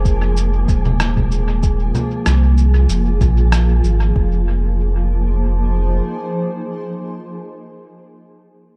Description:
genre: ambient dub.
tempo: 95 BPM.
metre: 4/4.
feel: swing 54% on 16ths.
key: F minor.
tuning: A4 = 440 Hz.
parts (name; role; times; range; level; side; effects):
granular cloud pad; sustained chords; 0.0-7.4 s; F3 to C5; -26 LUFS; equal; built-in reverb.
warm sub bass; bass; 0.0-6.0 s; Eb1 to C2; -17 LUFS; equal; none.
wind-like tuned noise texture; texture; 0.0-4.2 s; Ab3 to Ab4; -33 LUFS; equal; built-in reverb.
electronic cabasa, congas and rim click; drums; 0.1-4.0 s; none; -26 LUFS; equal; dub echo.
electronic kick drum; drums; 0.1-4.3 s; none; -20 LUFS; equal; none.
room: digital ambience.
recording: echo-heavy mix.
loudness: -17 LUFS.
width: mono.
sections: 0.0-4.2 A section; 4.2-6.7 B section.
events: none.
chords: 0.0 Fm7.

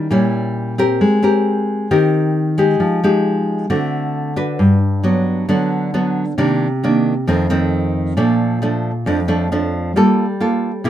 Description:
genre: bossa nova.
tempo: 134 BPM.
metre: 4/4.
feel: straight.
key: unclear.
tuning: A4 = 441 Hz.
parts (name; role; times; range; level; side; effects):
nylon-string guitar; solo; 0.0-10.9 s; F2 to Cb5; -14 LUFS; equal; none.
room: light reverb.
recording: minimal, uncompressed stereo recording.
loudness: -14 LUFS.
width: side -11 dB against mid.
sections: 0.0-4.6 A section; 4.6-10.9 B section.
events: none.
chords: 0.0 Eb7b9 (rootless); 1.0 Abmaj9; 2.8 Fm9; 3.7 D7; 4.6 Gmaj7; 6.4 Cm9; 7.3 F7; 8.2 Bbmaj7; 10.0 Gm9.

